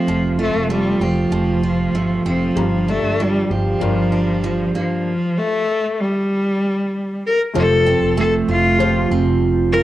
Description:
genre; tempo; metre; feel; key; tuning
pop; 96 BPM; 4/4; straight; F major; A4 = 440 Hz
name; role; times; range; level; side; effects
bright cello; melody; 0.0-9.8 s; F3 to Bb4; -18 LUFS; left 1 dB; cassette tape
picked steel-string acoustic guitar; accompaniment; 0.0-9.8 s; G2 to G4; -20 LUFS; right 4 dB; cassette tape
upright bass; bass; 0.1-9.8 s; F1 to G1; -22 LUFS; equal; transformer saturation
clear upright piano; accompaniment; 2.6-9.8 s; G3 to Bb5; -27 LUFS; left 7 dB; cassette tape
room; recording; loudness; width
light reverb, small room ambience; home recording on cassette; -16 LUFS; side -14 dB against mid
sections
0.0-7.6 A section; 7.6-9.8 B section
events
none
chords
0.0 Fadd9; 2.6 Gm7; 7.6 Fadd9

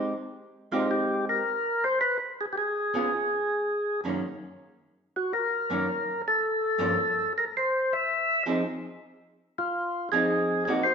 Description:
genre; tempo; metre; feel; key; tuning
jazz; 108 BPM; 4/4; swing 69% on 8ths; unclear; A4 = 440 Hz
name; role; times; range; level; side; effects
archtop guitar, miked and amplified; accompaniment; 0.0-10.8 s; Gb2 to Ab4; -29 LUFS; right 1 dB; none
percussive tonewheel organ; melody; 0.7-10.9 s; F4 to E5; -25 LUFS; equal; slow rotary speaker
room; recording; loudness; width
wet stone room reverb, RT60 1.4 s; band playing live in one room, nothing above 7.6 kHz; -25 LUFS; side -6 dB against mid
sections
0.0-10.9 A section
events
none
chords
0.0 Abmaj7; 2.0 Db7; 4.2 Gb6; 6.4 Gm7b5; 7.5 C; 8.6 Fm7

